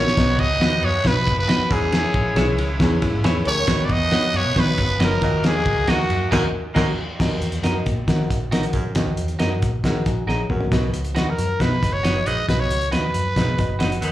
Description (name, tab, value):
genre	uptempo 1960s-style soul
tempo	136 BPM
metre	4/4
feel	straight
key	B major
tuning	A4 = 441 Hz
part	growling trumpet	melody	0.0-6.3, 11.2-14.0 s	F#4 to D#5	-22 LUFS	equal	none
part	clear grand piano	accompaniment	0.0-14.1 s	B2 to A#5	-28 LUFS	left 3 dB	slapback echo
part	hollow-body jazz guitar	riff	0.0-0.2, 3.0-6.9, 10.1-10.9 s	D#4 to C#5	-31 LUFS	left 7 dB	slapback echo
part	warm baritone saxophone	riff	0.0-14.1 s	D#2 to B2	-29 LUFS	right 4 dB	slapback echo
part	vintage muted fingered electric bass	bass	0.0-14.1 s	F#1 to D#3	-23 LUFS	equal	none
part	cloth-damped thuddy drum kit	drums	0.1-14.1 s	crash cymbal, hi-hat, kick drum, ride cymbal, snare drum, toms	-22 LUFS	equal	none
part	edgy saxophone section	second line	0.2-6.9, 11.6-14.1 s	F#3 to D#5	-31 LUFS	right 1 dB	slapback echo
part	clean electric guitar	stabs	0.6-13.9 s	F#4 to E5	-30 LUFS	right 5 dB	slapback echo
room	small room ambience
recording	live gig heard through the venue's PA, club reverb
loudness	-18 LUFS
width	side -14 dB against mid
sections	0.0-7.2 A section; 7.2-10.7 B section; 10.7-14.1 C section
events	drum fill 0.0, 10.3-10.7; band accent 6.3-7.2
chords	0.2 B; 1.7 E6; 3.7 B/D#; 5.2 D#m; 10.7 B